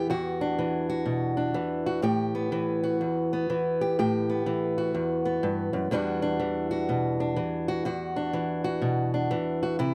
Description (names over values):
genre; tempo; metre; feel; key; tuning
blues; 124 BPM; 4/4; swing 63% on 8ths; E minor; A4 = 443 Hz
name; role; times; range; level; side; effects
fingerpicked old ladder-braced acoustic guitar; solo; 0.0-9.9 s; E2 to G4; -28 LUFS; equal; none
room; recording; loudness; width
light reverb; close, detailed microphones; -28 LUFS; mono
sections
0.0-9.9 A section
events
none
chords
0.1 Em9; 2.0 Asus2; 5.9 Em9